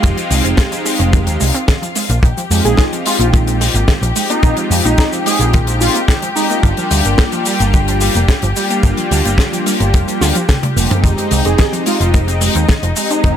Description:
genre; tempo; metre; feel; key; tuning
nu-disco, nu disco; 109 BPM; 4/4; straight; F dorian; A4 = 440 Hz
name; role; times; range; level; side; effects
warm analog pad; accompaniment; 0.0-13.4 s; G3 to G4; -20 LUFS; right 1 dB; chorus, sidechain pumping, dub echo
muted studio string section; sustained chords; 0.0-13.4 s; Eb4 to G5; -22 LUFS; left 4 dB; sidechain pumping
analog pluck; arpeggios; 0.0-13.3 s; D3 to F4; -23 LUFS; right 4 dB; chorus, cassette tape, sidechain pumping, ping-pong delay
picked electric bass with an envelope filter; bass; 0.0-13.3 s; F1 to F2; -16 LUFS; equal; none
kick drum; drums; 0.0-13.4 s; none; -12 LUFS; equal; none
tight funk drum kit; drums; 0.0-13.4 s; hi-hat, shaker, snare drum, toms; -19 LUFS; left 2 dB; none
wide unison lead; melody; 2.6-6.6, 11.5-13.4 s; Eb4 to Ab4; -20 LUFS; equal; lush chorus, ping-pong delay
room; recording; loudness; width
studio reverb; none; -11 LUFS; side -9 dB against mid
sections
0.0-13.4 A section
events
drum fill 10.5-11.0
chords
0.0 Fm7; 2.0 Bb9sus4; 6.6 Gm7; 11.0 Fm7

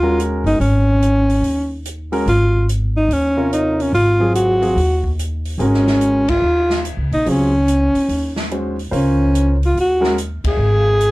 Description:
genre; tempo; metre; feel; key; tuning
modal jazz; 144 BPM; 4/4; swing 65% on 8ths; Ab mixolydian; A4 = 440 Hz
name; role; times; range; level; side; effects
breathy alto saxophone; melody; 0.0-11.1 s; Db4 to Ab4; -16 LUFS; equal; none
warm concert grand piano; accompaniment; 0.0-10.2 s; C3 to Db5; -21 LUFS; equal; none
upright bass; bass; 0.0-11.1 s; G1 to Eb2; -18 LUFS; equal; none
open jazz drum kit; drums; 0.2-11.1 s; hi-hat, kick drum, ride cymbal, snare drum; -28 LUFS; equal; none
room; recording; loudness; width
little or no reverb; lossy compression artefacts; -14 LUFS; side -20 dB against mid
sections
0.0-11.1 A section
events
band accent 6.2, 10.4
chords
0.0 Ab9sus4

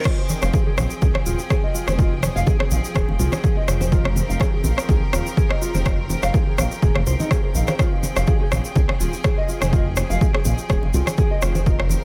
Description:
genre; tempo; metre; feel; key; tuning
afro house; 124 BPM; 4/4; swing 54% on 16ths; F minor; A4 = 440 Hz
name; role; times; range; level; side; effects
clear studio string section; sustained chords; 0.0-12.0 s; F3 to G5; -35 LUFS; equal; sidechain pumping
nylon-string guitar; arpeggios; 0.0-11.8 s; Eb4 to F5; -30 LUFS; equal; sidechain pumping, analog delay
tube shaker; percussion; 0.0-12.0 s; none; -36 LUFS; equal; none
deep house drum kit; drums; 0.1-11.9 s; crash cymbal, rim click; -30 LUFS; equal; overdrive, analog delay
electronic kick drum; drums; 0.1-11.8 s; none; -22 LUFS; equal; overdrive
congas; percussion; 0.3-12.0 s; none; -32 LUFS; equal; none
dark detuned saw bass; bass; 0.4-12.0 s; Eb1 to C2; -25 LUFS; equal; sidechain pumping
room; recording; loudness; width
small room ambience; echo-heavy mix; -20 LUFS; mono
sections
0.0-12.0 A section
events
none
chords
0.0 Fm

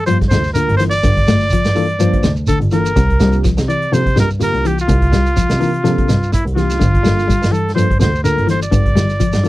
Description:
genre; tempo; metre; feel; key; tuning
afrobeat; 125 BPM; 4/4; swing 55% on 16ths; G dorian; A4 = 440 Hz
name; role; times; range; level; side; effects
clear trumpet; melody; 0.0-9.5 s; E4 to D5; -19 LUFS; right 1 dB; none
tine electric piano; accompaniment; 0.1-9.5 s; Bb3 to C5; -22 LUFS; equal; overdrive, medium stereo tremolo
clean electric guitar; arpeggios; 0.1-9.5 s; C3 to A3; -20 LUFS; left 5 dB; none
rich double bass; bass; 0.1-9.5 s; G1 to C3; -16 LUFS; equal; none
vintage drum kit; drums; 0.1-9.5 s; hi-hat, kick drum, snare drum; -19 LUFS; equal; none
shekere; percussion; 0.1-9.5 s; none; -21 LUFS; right 2 dB; none
room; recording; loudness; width
light reverb; none; -12 LUFS; side -17 dB against mid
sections
0.0-9.5 A section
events
none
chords
0.0 Gm9; 3.0 C7sus4; 6.8 Gm9

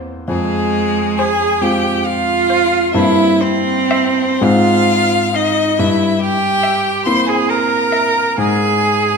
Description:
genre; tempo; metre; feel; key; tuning
classical, slow romantic movement for piano quartet; 39-48 BPM (dotted quarters); 6/8; rubato; F minor; A4 = 440 Hz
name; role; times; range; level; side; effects
rich violin; second line; 0.0-8.3 s; C5 to F5; -25 LUFS; left 4 dB; none
warm concert grand piano; accompaniment; 0.0-9.2 s; F2 to G4; -18 LUFS; left 1 dB; none
clear violin; melody; 0.3-9.2 s; Ab4 to C6; -19 LUFS; left 8 dB; none
rich cello; second line; 0.3-9.2 s; Ab3 to C5; -16 LUFS; right 6 dB; none
room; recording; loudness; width
wet recital hall reverb, RT60 1.5 s; none; -12 LUFS; side -5 dB against mid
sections
0.0-9.2 A section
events
none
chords
0.3 Fm; 2.9 C7/G; 4.4 Fm/Ab; 5.8 C7/G; 8.4 N.C.

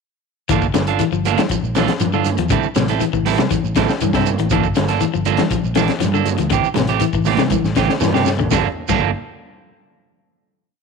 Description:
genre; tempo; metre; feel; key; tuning
afrobeat; 120 BPM; 4/4; straight; G dorian; A4 = 437 Hz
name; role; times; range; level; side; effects
electric guitar at the edge of break-up; arpeggios; 0.5-9.0 s; G2 to F3; -21 LUFS; left 14 dB; none
electric guitar at the edge of break-up; stabs; 0.5-9.1 s; E3 to A4; -21 LUFS; right 15 dB; none
fingered electric bass; bass; 0.5-9.1 s; G1 to G2; -22 LUFS; equal; none
crunchy breakbeat drum kit; drums; 0.5-9.0 s; crash cymbal, hi-hat, kick drum, snare drum, toms; -22 LUFS; left 5 dB; none
congas; percussion; 0.5-9.0 s; none; -24 LUFS; right 13 dB; none
shekere; percussion; 0.5-9.0 s; none; -28 LUFS; right 8 dB; none
room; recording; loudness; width
light reverb, small room ambience; 1960s-style stereo with parts hard left and right; -15 LUFS; side -5 dB against mid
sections
0.5-8.5 groove; 8.5-10.5 final chord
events
drum fill 7.5-8.5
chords
0.5 Gm9; 2.5 Am7; 4.5 Gm9; 6.5 Am7; 8.5 Gm9

